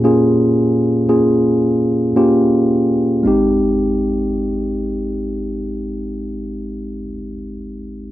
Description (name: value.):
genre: pop.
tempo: 54 BPM.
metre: 4/4.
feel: straight.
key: Ab major.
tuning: A4 = 440 Hz.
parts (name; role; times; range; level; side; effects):
bright tine electric piano; accompaniment; 0.0-8.1 s; Ab1 to Ab4; -15 LUFS; equal; none.
room: light reverb.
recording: dry, close 1970s-style studio recording.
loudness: -14 LUFS.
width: side -14 dB against mid.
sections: 0.0-3.3 A section; 3.3-7.7 B section.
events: slowing down 0.0-3.3.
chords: 0.0 Bbm7; 3.3 Abmaj7.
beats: 0.05 1.09 2.16 | 3.25 4.36 5.46 6.56.